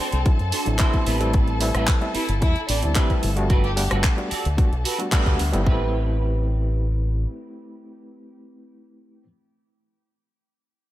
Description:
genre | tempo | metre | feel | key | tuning
nu-disco, nu disco | 111 BPM | 4/4 | straight | A dorian | A4 = 435 Hz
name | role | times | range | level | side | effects
warm symphonic violin section | melody | 0.0-3.9 s | C4 to G4 | -32 LUFS | equal | dub echo
warm studio string section | sustained chords | 0.0-5.7 s | A4 to A5 | -33 LUFS | left 3 dB | sidechain pumping
clean electric guitar | riff | 0.0-9.3 s | C4 to D5 | -30 LUFS | right 4 dB | ensemble chorus, dub echo
fingered electric bass with an envelope filter | bass | 0.1-7.2 s | G1 to F#2 | -23 LUFS | equal | none
house drum kit | drums | 0.1-5.6 s | handclaps, hi-hat, rim click | -28 LUFS | right 1 dB | none
overdriven reed electric piano | accompaniment | 0.3-9.3 s | F#3 to F#5 | -29 LUFS | equal | fast tremolo, sidechain pumping, dub echo
electronic kick drum | drums | 0.3-5.8 s | none | -19 LUFS | equal | none
room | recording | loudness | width
digital ambience | none | -19 LUFS | side -14 dB against mid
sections
0.0-5.7 A section; 5.7-10.0 B section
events
drop 0.0-5.7; band accent 5.1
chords
0.0 D7; 1.1 Gmaj9; 5.7 Am9

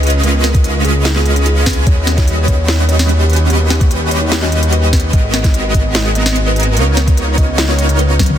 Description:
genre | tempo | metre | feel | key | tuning
future bass | 147 BPM | 4/4 | half-time | unclear | A4 = 445 Hz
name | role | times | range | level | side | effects
kalimba | melody | 0.0-8.3 s | G4 to D#5 | -24 LUFS | left 1 dB | sidechain pumping, digital delay
thumb-piano-like synth pluck | arpeggios | 0.0-8.4 s | G#3 to B4 | -27 LUFS | right 2 dB | none
supersaw chords | riff | 0.0-8.4 s | G3 to D#5 | -17 LUFS | right 1 dB | wide subtle chorus, sidechain pumping
wide detuned saw bass | bass | 0.0-8.4 s | G#1 to D#2 | -14 LUFS | equal | chorus, sidechain pumping
trap drum kit | drums | 0.0-8.4 s | hi-hat, snare drum, toms | -19 LUFS | equal | none
electronic kick drum | drums | 0.5-8.3 s | none | -12 LUFS | equal | none
room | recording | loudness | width
digital ambience | dense, heavily limited modern master | -10 LUFS | side -10 dB against mid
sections
0.0-8.4 A section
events
drop 0.0-8.4; drum fill 8.2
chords
0.0 C#9; 1.9 D#7alt; 5.1 G#m9; 6.8 C#13

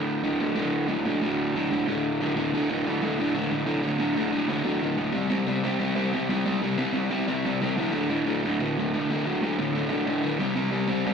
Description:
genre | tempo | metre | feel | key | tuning
punk | 183 BPM | 4/4 | straight | unclear | A4 = 439 Hz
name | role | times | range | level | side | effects
crunchy overdriven guitar | solo | 0.0-11.1 s | D2 to C4 | -24 LUFS | equal | ping-pong delay
room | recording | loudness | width
moderate club reverb, RT60 0.8 s | live gig heard through the venue's PA, club reverb | -24 LUFS | side -6 dB against mid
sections
0.0-2.5 A section; 2.5-11.1 B section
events
none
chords
0.0 D5; 5.2 C5; 7.8 D5; 10.4 C5

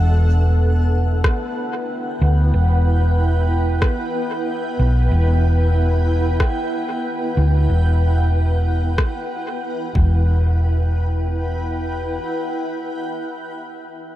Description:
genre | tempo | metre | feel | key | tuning
ambient dub | 93 BPM | 4/4 | swing 56% on 16ths | E minor | A4 = 437 Hz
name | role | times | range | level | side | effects
granular cloud pad | sustained chords | 0.0-13.6 s | D4 to G5 | -25 LUFS | equal | built-in reverb
hollow-body short-scale fingered electric bass | bass | 0.0-12.2 s | E1 to D2 | -16 LUFS | equal | none
bubbling stepped-filter texture | texture | 0.0-10.3 s | B3 to B4 | -29 LUFS | equal | chorus, built-in reverb
electronic kick drum | drums | 1.2-10.1 s | none | -18 LUFS | equal | none
electronic rim click | drums | 1.2-9.1 s | none | -26 LUFS | equal | dub echo
room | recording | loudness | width
little or no reverb | none | -16 LUFS | side -14 dB against mid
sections
0.0-10.3 A section; 10.3-12.9 B section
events
none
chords
0.0 Em7; 10.0 E5; 10.3 Em

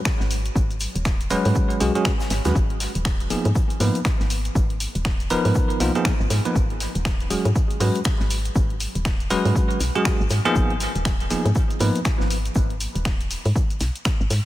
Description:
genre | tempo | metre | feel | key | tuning
deep house | 120 BPM | 4/4 | swing 60% on 16ths | G# dorian | A4 = 440 Hz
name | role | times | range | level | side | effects
electronic kick drum | drums | 0.1-14.2 s | none | -22 LUFS | equal | none
punchy analog drum machine | drums | 0.1-14.4 s | finger snaps, hi-hat, shaker | -30 LUFS | left 1 dB | none
tight metal drum kit | drums | 0.1-14.4 s | hi-hat, shaker, snare drum | -39 LUFS | left 1 dB | none
woody FM bass | bass | 0.2-14.4 s | D#1 to G#2 | -24 LUFS | equal | tube saturation, sidechain pumping
bell-like tine electric piano | stabs | 1.3-12.0 s | E#3 to B4 | -24 LUFS | right 1 dB | medium stereo tremolo, sidechain pumping, tape echo
room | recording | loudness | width
light reverb, small room ambience | none | -19 LUFS | side -15 dB against mid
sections
0.0-14.5 A section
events
none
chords
0.0 C#sus4; 2.6 G#m69; 6.6 C#sus4; 10.6 G#m69

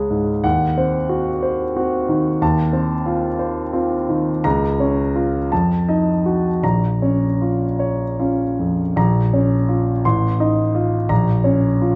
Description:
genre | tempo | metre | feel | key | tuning
classical, romantic character piece for solo piano | 50-63 BPM (dotted quarters) | 6/8 | rubato | Bb minor | A4 = 440 Hz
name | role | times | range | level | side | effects
warm concert grand piano | solo | 0.0-12.0 s | A1 to C6 | -19 LUFS | equal | none
room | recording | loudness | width
moderate recital hall reverb, RT60 1.4 s | worn, warbling old tape, cassette tape, warbly pitch drift | -19 LUFS | mono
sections
0.0-9.0 A section; 9.0-12.0 A section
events
none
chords
0.4 Cdim/Eb; 2.4 F7/Eb; 4.4 Bbm/Db; 5.5 F7b9; 6.6 Bbm; 10.0 F7/A; 11.1 Bbm

